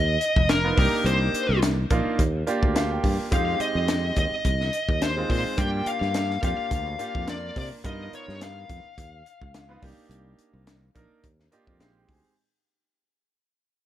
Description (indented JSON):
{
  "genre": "electric jazz fusion",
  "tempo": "106 BPM",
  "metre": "4/4",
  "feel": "swing 54% on 16ths",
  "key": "unclear",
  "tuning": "A4 = 441 Hz",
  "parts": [
    { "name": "smooth overdriven lead guitar", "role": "melody", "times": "0.0-11.8 s", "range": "A#4 to G5", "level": "-27 LUFS", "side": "left 2 dB", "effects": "tape echo" },
    { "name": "sustaining fretless electric bass", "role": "bass", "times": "0.0-12.3 s", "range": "F1 to C3", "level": "-27 LUFS", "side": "equal", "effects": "none" },
    { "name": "crisp fusion drum kit", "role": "drums", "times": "0.2-12.2 s", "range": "hi-hat, kick drum, snare drum", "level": "-26 LUFS", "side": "equal", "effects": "none" },
    { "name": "bright grand piano", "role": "accompaniment", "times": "0.6-12.4 s", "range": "Ab3 to Ab5", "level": "-29 LUFS", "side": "right 3 dB", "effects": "none" }
  ],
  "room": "little or no reverb",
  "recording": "none",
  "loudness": "-22 LUFS",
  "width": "side -12 dB against mid",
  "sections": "0.0-12.4 A section",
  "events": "fade-out 0.0-12.4; grand piano fill 2.2-3.3, 11.2-12.4",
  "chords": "0.0 G7#9b13 (rootless); 0.8 Cm9; 2.2 Ebmaj9; 3.3 Fm9; 5.6 Gm7; 7.8 G7alt; 9.8 Cm9; 11.2 Ebmaj9; 11.8 Bb13sus4"
}